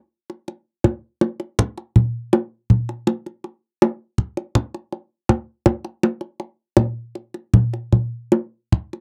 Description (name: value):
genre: gamelan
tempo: 81 BPM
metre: 4/4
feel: straight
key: none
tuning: none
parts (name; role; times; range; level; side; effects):
- kendang; percussion; 0.3-9.0 s; none; -18 LUFS; equal; none
room: light reverb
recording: dry, close 1970s-style studio recording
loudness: -21 LUFS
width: mono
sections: 0.0-9.0 A section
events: none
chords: none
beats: | 0.10 0.84 1.58 2.33 | 3.07 3.81 4.55 5.29 | 6.03 6.78 7.54 8.33